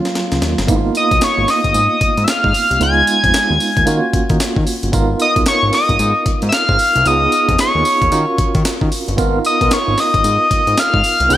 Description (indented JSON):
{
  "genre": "R&B, new jack swing",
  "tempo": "113 BPM",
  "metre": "4/4",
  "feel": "swing 62% on 16ths",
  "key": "G# dorian",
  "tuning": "A4 = 439 Hz",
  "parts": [
    { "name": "tine electric piano", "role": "accompaniment", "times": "0.0-11.4 s", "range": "F#3 to A#4", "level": "-20 LUFS", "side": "right 4 dB", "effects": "fast tremolo" },
    { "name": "breakbeat sampler-style drum kit", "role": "drums", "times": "0.1-11.4 s", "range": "hi-hat, kick drum, snare drum, tambourine", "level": "-19 LUFS", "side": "left 1 dB", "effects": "overdrive" },
    { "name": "fat analog bass", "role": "bass", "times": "0.3-11.4 s", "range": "G1 to D#3", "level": "-19 LUFS", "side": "left 1 dB", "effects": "none" },
    { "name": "fat analog lead", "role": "melody", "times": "1.0-11.4 s", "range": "C#6 to G#6", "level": "-14 LUFS", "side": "left 1 dB", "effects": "chorus" },
    { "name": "tonewheel organ", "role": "stabs", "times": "9.2-11.4 s", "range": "B3 to B4", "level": "-23 LUFS", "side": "left 1 dB", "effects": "overdrive, slow rotary speaker" }
  ],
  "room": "light reverb",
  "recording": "none",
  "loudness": "-12 LUFS",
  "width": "side -13 dB against mid",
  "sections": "0.7-11.4 A section",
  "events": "drum fill 0.0-0.7",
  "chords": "0.0 D#m7; 0.7 G#m69; 2.8 C#7; 3.9 D#m7; 4.9 G#m69; 7.1 C#7; 8.1 D#m7; 9.2 G#m69"
}